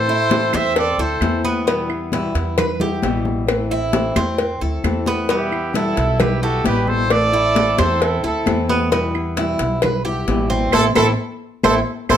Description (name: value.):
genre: latin, Cuban son and guajira.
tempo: 132 BPM.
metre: 4/4.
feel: straight.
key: unclear.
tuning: A4 = 440 Hz.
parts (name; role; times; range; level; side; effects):
warm trumpet; melody; 0.0-1.5, 5.3-12.2 s; G4 to E5; -20 LUFS; right 1 dB; none.
brilliant trumpet; second line; 0.0-1.4, 5.3-12.2 s; E4 to C5; -26 LUFS; right 8 dB; none.
flamenco guitar; accompaniment; 0.0-12.2 s; B2 to E4; -24 LUFS; left 3 dB; none.
upright bass; bass; 0.0-12.2 s; A1 to A2; -24 LUFS; right 1 dB; none.
Cuban tres; arpeggios; 0.1-12.2 s; B3 to B4; -23 LUFS; right 3 dB; none.
congas; percussion; 0.1-12.2 s; none; -23 LUFS; left 3 dB; none.
cowbell; percussion; 0.3-12.2 s; none; -23 LUFS; left 4 dB; none.
claves; percussion; 0.5-12.2 s; none; -30 LUFS; right 7 dB; none.
room: moderate large studio reverb, RT60 0.9 s.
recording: none.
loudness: -16 LUFS.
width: side -9 dB against mid.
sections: 0.0-12.2 A section.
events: drum fill 5.1; band accent 10.7-12.2.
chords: 0.0 Am; 1.7 Em; 3.5 Am; 5.3 Em; 7.1 Am; 8.9 Em; 10.7 Am.